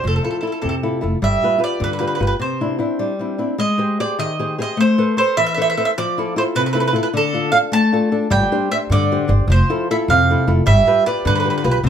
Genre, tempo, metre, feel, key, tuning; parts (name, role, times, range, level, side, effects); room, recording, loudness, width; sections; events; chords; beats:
italian folk, Italian serenade; 102 BPM (dotted quarters); 6/8; straight; A4 = 440 Hz
mandolin; melody; 0.0-11.9 s; A4 to A5; -19 LUFS; right 4 dB
nylon-string guitar; accompaniment; 0.0-11.9 s; C3 to C5; -19 LUFS; left 3 dB
upright bass; bass; 0.0-2.3, 8.3-11.9 s; F1 to G2; -18 LUFS; equal
moderate studio ambience, RT60 0.5 s; band playing live in one room; -15 LUFS; side -8 dB against mid
0.0-3.6 A section; 3.6-11.9 A section
break 2.4-3.6
0.1 Fmaj7; 1.2 G7; 2.4 Cadd9; 3.6 Abmaj7; 4.8 Amadd9; 5.9 Fmaj7; 7.1 Dm; 8.3 Gsus4; 9.5 Fmaj7; 10.7 G7
| 0.05 0.64 | 1.22 1.80 | 2.39 2.98 | 3.58 4.17 | 4.77 5.36 | 5.95 6.53 | 7.11 7.70 | 8.30 8.89 | 9.48 10.07 | 10.66 11.25 | 11.84